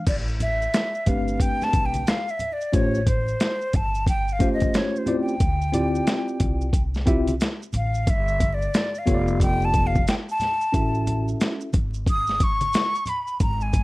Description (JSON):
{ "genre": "hip hop, jazz-hop", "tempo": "90 BPM", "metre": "4/4", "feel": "swing 62% on 16ths", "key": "A minor", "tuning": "A4 = 440 Hz", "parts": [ { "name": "tine electric piano", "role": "accompaniment", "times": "0.0-11.7 s", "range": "A3 to E5", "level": "-25 LUFS", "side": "left 1 dB", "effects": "medium stereo tremolo, plate reverb" }, { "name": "breathy jazz flute", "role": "melody", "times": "0.1-13.8 s", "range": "B#4 to D#6", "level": "-26 LUFS", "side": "equal", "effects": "slapback echo, plate reverb" }, { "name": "upright bass", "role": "bass", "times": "0.1-13.8 s", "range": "F1 to D2", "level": "-26 LUFS", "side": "equal", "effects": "none" }, { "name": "dusty soul sampler-style drum kit", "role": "drums", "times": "0.1-13.8 s", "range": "crash cymbal, hi-hat, kick drum, snare drum", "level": "-23 LUFS", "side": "equal", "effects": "overdrive" }, { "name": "maracas and congas", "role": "percussion", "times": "0.1-13.8 s", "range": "none", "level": "-36 LUFS", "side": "right 1 dB", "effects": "none" } ], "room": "light reverb", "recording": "dark, warm production, vinyl crackle", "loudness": "-20 LUFS", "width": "side -20 dB against mid", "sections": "0.1-13.8 A section", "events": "flute solo 0.1-13.8", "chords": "0.1 Am11; 2.7 A7alt; 5.4 Dm11; 8.1 G9; 10.7 A6" }